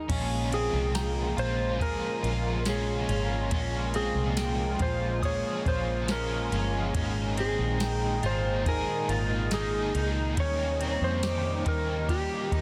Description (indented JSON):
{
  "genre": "dream pop",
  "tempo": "70 BPM",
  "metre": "4/4",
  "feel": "straight",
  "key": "unclear",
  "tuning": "A4 = 440 Hz",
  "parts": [
    { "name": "warm analog pad", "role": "sustained chords", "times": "0.0-12.6 s", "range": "Bb2 to F4", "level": "-38 LUFS", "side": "equal", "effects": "chorus, shimmer reverb" },
    { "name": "electric guitar at the edge of break-up", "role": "arpeggios", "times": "0.0-12.6 s", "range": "C4 to G5", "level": "-37 LUFS", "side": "equal", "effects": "lush chorus, tape echo, shimmer reverb" },
    { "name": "vintage muted fingered electric bass", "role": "bass", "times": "0.0-12.6 s", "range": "G1 to F2", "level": "-33 LUFS", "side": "equal", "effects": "none" },
    { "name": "biting overdriven guitar", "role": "accompaniment", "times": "0.1-12.6 s", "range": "Bb2 to Ab4", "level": "-38 LUFS", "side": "equal", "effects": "tremolo, analog chorus, shimmer reverb" },
    { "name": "soft vintage rhythm box", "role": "drums", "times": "0.1-12.6 s", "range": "crash cymbal, kick drum, ride cymbal, snare drum, tambourine", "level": "-36 LUFS", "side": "equal", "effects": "overdrive" },
    { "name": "clean lap steel guitar", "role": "melody", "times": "0.5-12.6 s", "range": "G4 to Db5", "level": "-35 LUFS", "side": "equal", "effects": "tape echo, shimmer reverb" },
    { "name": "soft synth bell", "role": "texture", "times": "0.9-9.0 s", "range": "Bb5 to Eb6", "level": "-47 LUFS", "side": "equal", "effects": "chorus, tape echo, shimmer reverb" }
  ],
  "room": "moderate lush hall reverb, RT60 2.5 s",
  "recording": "dense, heavily limited modern master",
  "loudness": "-28 LUFS",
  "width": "mono",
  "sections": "0.1-12.6 A section",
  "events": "none",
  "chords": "0.1 Bbm7; 6.9 Absus2",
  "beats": "| 0.09 0.95 1.81 2.66 | 3.52 4.38 5.23 6.09 | 6.95 7.81 8.66 9.52 | 10.38 11.23 12.09"
}